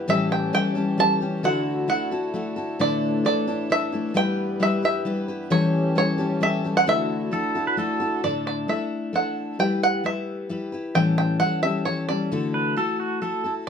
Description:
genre	acoustic folk duo or small band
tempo	132 BPM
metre	3/4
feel	straight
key	unclear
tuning	A4 = 440 Hz
part	picked steel-string acoustic guitar	accompaniment	0.0-13.7 s	A2 to B4	-24 LUFS	left 3 dB	none
part	pedal harmonium	sustained chords	0.0-8.2 s	D2 to B4	-32 LUFS	right 4 dB	none
part	bluegrass banjo	melody	0.1-13.7 s	C#5 to A5	-24 LUFS	right 2 dB	none
part	pedal steel guitar	second line	7.3-8.2, 12.5-13.5 s	F#4 to B4	-25 LUFS	right 2 dB	none
room	moderate studio reverb, RT60 0.5 s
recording	close, detailed microphones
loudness	-21 LUFS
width	side -7 dB against mid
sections	0.0-8.2 A section; 8.2-13.7 B section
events	none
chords	0.1 A7; 1.4 Dadd9; 2.8 Asus4; 4.2 Em/G; 5.5 A7; 6.9 Dadd9; 8.2 Asus4; 9.6 Em/G; 11.0 A7; 12.3 Dadd9

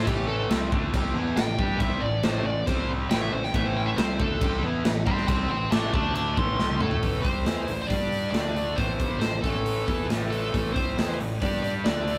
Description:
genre	hard rock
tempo	138 BPM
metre	4/4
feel	straight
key	A minor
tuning	A4 = 440 Hz
part	high-gain lead guitar	melody	0.0-12.2 s	G4 to D6	-32 LUFS	equal	distortion
part	distorted electric guitar	riff	0.0-12.2 s	G2 to A4	-36 LUFS	equal	distortion
part	scooped high-gain guitar	riff	0.0-12.2 s	G2 to A4	-37 LUFS	equal	distortion
part	fuzz fingered electric bass	bass	0.0-12.2 s	G1 to A2	-32 LUFS	equal	overdrive
part	big rock drum kit	drums	0.1-12.2 s	crash cymbal, hi-hat, kick drum, snare drum, toms	-30 LUFS	equal	none
room	moderate small room reverb, RT60 0.6 s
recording	rough rehearsal-room recording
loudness	-26 LUFS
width	mono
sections	0.0-7.0 A section; 7.0-12.2 B section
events	lead electric guitar solo 0.0-7.0; drum fill 6.6-7.0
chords	0.0 Am; 2.7 C5; 3.1 Am; 5.9 D5; 6.4 Am; 7.9 G5; 8.3 D5; 8.8 Am; 11.4 G5

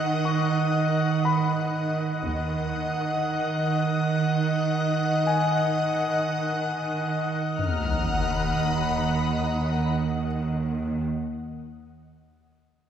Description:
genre	cinematic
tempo	90 BPM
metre	4/4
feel	straight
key	Eb minor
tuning	A4 = 442 Hz
part	soft additive organ-like pad	sustained chords	0.0-11.0 s	Eb5 to Gb5	-27 LUFS	left 2 dB	ensemble chorus, built-in reverb
part	muted symphonic cello section	bass	0.0-11.0 s	Eb3	-26 LUFS	right 5 dB	none
part	clear concert grand piano	texture	0.0-7.6 s	Ab5 to Db6	-32 LUFS	left 5 dB	none
part	muted symphonic double bass section	bass	2.2-2.9, 7.6-11.0 s	Eb2	-30 LUFS	right 2 dB	none
part	sub drop	sound effects	7.6-11.8 s	none	-30 LUFS	left 3 dB	none
part	muted symphonic violin section	texture	7.6-9.9 s	Bb5 to F6	-34 LUFS	left 4 dB	none
room	wet concert hall reverb, RT60 2.0 s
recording	minimal, uncompressed stereo recording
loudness	-23 LUFS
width	side -8 dB against mid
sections	0.0-7.6 A section; 7.6-10.3 B section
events	impact 7.6-10.3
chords	0.0 Ebm

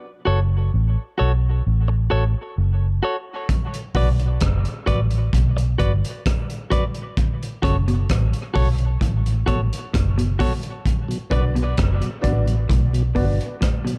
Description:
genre	dub reggae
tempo	65 BPM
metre	4/4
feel	straight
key	B minor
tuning	A4 = 440 Hz
part	clean electric guitar	accompaniment	0.3-11.4 s	F#4 to D5	-30 LUFS	equal	dub echo
part	vintage muted fingered electric bass	bass	0.3-13.4 s	F#1 to B1	-22 LUFS	equal	none
part	crunchy breakbeat drum kit	drums	3.5-14.0 s	hi-hat, kick drum, rim click	-25 LUFS	equal	none
part	electric guitar through a small old amp	arpeggios	7.6-14.0 s	A2 to D3	-32 LUFS	equal	dub echo
part	mellow tonewheel organ	accompaniment	11.1-13.9 s	B2 to F#4	-33 LUFS	equal	slow rotary speaker, dub echo
part	warm upright piano	stabs	11.3-13.4 s	D4 to D5	-32 LUFS	equal	dub echo
room	small room ambience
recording	dark, warm production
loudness	-21 LUFS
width	mono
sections	0.0-14.0 A section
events	break 0.0-10.9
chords	0.0 F#m; 3.5 Bm; 7.2 F#m; 10.9 Bm

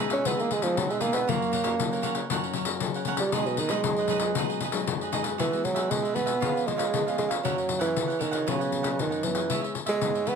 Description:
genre	samba and choro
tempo	117 BPM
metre	4/4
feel	straight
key	B major, E major from 5.4 s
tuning	A4 = 439 Hz
part	cavaquinho	accompaniment	0.0-10.4 s	D#4 to F#5	-33 LUFS	right 6 dB	none
part	nylon-string guitar	accompaniment	0.0-10.4 s	F#2 to G#4	-33 LUFS	left 5 dB	none
part	warm bassoon	melody	0.1-10.4 s	B2 to C#4	-27 LUFS	right 4 dB	none
part	pandeiro	percussion	0.1-10.4 s	none	-30 LUFS	left 8 dB	none
room	moderate studio reverb, RT60 0.6 s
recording	none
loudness	-24 LUFS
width	side -6 dB against mid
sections	0.0-5.4 A section; 5.4-10.4 B section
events	bassoon solo 0.0-5.4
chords	0.0 Emaj7; 1.3 F#; 3.3 B6; 5.4 Eadd9; 6.4 C#7/E#; 7.4 F#7; 8.5 Bsus2; 9.5 C#m7

